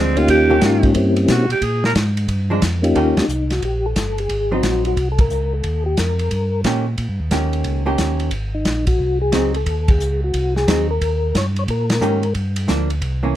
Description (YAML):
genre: soul jazz organ trio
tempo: 179 BPM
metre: 4/4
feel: swing 65% on 8ths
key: Eb mixolydian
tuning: A4 = 435 Hz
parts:
  - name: growling alto saxophone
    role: melody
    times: 0.0-1.9 s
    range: C4 to Bb4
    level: -18 LUFS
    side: right 4 dB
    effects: none
  - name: hollow-body jazz guitar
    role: accompaniment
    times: 0.0-13.4 s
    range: Eb3 to G4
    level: -21 LUFS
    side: right 2 dB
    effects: none
  - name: mellow tonewheel organ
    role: bass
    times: 0.0-13.3 s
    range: G1 to Cb3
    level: -20 LUFS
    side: equal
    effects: chorus vibrato, slow rotary speaker
  - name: percussive tonewheel organ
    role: melody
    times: 0.2-12.3 s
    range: Bb3 to Db5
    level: -20 LUFS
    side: left 2 dB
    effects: slow rotary speaker, chorus vibrato
  - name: warm soul drum kit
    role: drums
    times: 0.2-13.1 s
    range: hi-hat, kick drum, ride cymbal, snare drum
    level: -21 LUFS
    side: equal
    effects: none
room: little or no reverb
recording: close, detailed microphones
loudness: -16 LUFS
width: side -12 dB against mid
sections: 0.0-3.0 A section; 3.0-13.4 B section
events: alto saxophone solo 0.0-3.0; band accent 3.1, 5.1, 9.8, 11.8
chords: 0.3 Eb7; 0.9 C7b9; 1.6 Bb7(no3); 3.0 Eb7; 4.3 Ab7; 5.6 Eb7; 8.3 Ab7; 11.0 Eb7; 12.4 Gm7